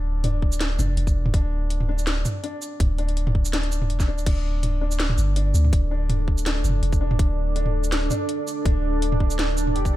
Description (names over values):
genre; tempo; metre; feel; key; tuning
half-time drum and bass; 164 BPM; 4/4; swing 54% on 16ths, half-time; unclear; A4 = 440 Hz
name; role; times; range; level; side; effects
felt-muted upright piano; arpeggios; 0.0-10.0 s; D4 to A4; -33 LUFS; left 3 dB; analog delay
long sustained 808-style bass; bass; 0.0-10.0 s; D1 to D2; -23 LUFS; equal; tube saturation
drum and bass drum kit; drums; 0.2-9.9 s; crash cymbal, hi-hat, shaker, snare drum, toms; -28 LUFS; right 1 dB; none
electronic kick drum; drums; 0.4-9.9 s; none; -20 LUFS; equal; none
deep dark ambient pad; sustained chords; 5.5-10.0 s; D4 to D5; -28 LUFS; right 2 dB; chorus, built-in reverb, sidechain pumping
room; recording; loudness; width
little or no reverb; none; -20 LUFS; side -15 dB against mid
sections
0.0-10.0 A section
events
none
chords
0.0 D5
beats
0.24 0.61 0.97 | 1.34 1.70 2.07 2.44 | 2.80 3.17 3.53 3.90 | 4.26 4.63 5.00 5.36 | 5.73 6.09 6.46 6.83 | 7.19 7.56 7.92 8.29 | 8.66 9.02 9.39 9.75